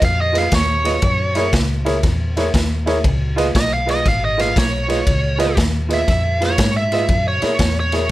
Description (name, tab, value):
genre	electric blues shuffle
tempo	119 BPM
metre	4/4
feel	swing 66% on 8ths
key	Db mixolydian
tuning	A4 = 439 Hz
part	biting lead guitar	melody	0.0-8.1 s	Db5 to F5	-20 LUFS	right 1 dB	overdrive
part	vintage muted fingered electric bass	bass	0.0-8.1 s	Ab1 to Ab2	-20 LUFS	equal	none
part	raw garage drum kit	drums	0.0-8.0 s	kick drum, ride cymbal, snare drum	-19 LUFS	equal	none
part	warm concert grand piano	accompaniment	0.3-8.0 s	Fb4 to F5	-21 LUFS	right 2 dB	none
room	little or no reverb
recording	none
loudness	-15 LUFS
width	side -16 dB against mid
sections	0.0-8.1 A section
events	none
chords	0.0 Db7; 1.0 Gb7; 3.0 Db7; 7.1 Gb7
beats	0.02 0.52 | 1.03 1.53 2.04 2.54 | 3.05 3.55 4.06 4.56 | 5.07 5.57 6.08 6.58 | 7.09 7.59 8.10